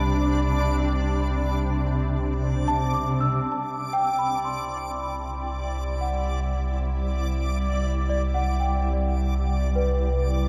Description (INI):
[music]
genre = ambient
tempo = 72 BPM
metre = 4/4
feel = straight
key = C lydian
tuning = A4 = 440 Hz
[part]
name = shimmering ambient pad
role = sustained chords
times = 0.0-10.5 s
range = C3 to E4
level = -31 LUFS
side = equal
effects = chorus, built-in reverb
[part]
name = celesta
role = arpeggios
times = 0.0-10.5 s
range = B4 to E6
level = -32 LUFS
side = equal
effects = delay
[part]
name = warm sub bass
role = bass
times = 0.0-10.5 s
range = C2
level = -28 LUFS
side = equal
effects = none
[part]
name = organ-like drone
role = drone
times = 0.0-3.6 s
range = C3 to G3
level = -39 LUFS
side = equal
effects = none
[part]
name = backwards swelling texture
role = texture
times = 0.0-10.5 s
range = D5 to D6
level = -37 LUFS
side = equal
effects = built-in reverb
[sound]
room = wet huge ambient reverb, RT60 8.3 s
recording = dark, warm production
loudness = -25 LUFS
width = mono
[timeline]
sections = 0.0-3.5 A section; 3.5-10.5 B section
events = none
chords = 0.0 Bm/C; 3.5 Cmaj7